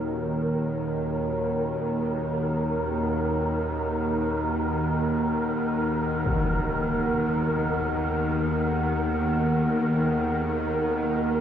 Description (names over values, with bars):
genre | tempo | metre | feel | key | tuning
dark ambient drone | free time | none | none | Eb minor | A4 = 440 Hz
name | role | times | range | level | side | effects
dark analog pad | sustained chords | 0.0-11.4 s | Eb3 to Gb5 | -32 LUFS | right 1 dB | wide subtle chorus
bowed-like drone | drone | 0.0-11.4 s | Eb2 to Eb3 | -26 LUFS | equal | built-in reverb
wind-like tuned noise texture | texture | 0.0-11.4 s | Bb4 | -30 LUFS | right 1 dB | built-in reverb
impact | percussion | 6.3-6.5 s | none | -32 LUFS | left 1 dB | low-pass filter on sfx
room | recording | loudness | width
wet cathedral reverb, RT60 5.4 s | in a vast, echoing space | -23 LUFS | side -9 dB against mid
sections
0.0-11.4 A section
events
none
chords
0.0 Ebm; 6.3 Abm7/Eb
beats
free time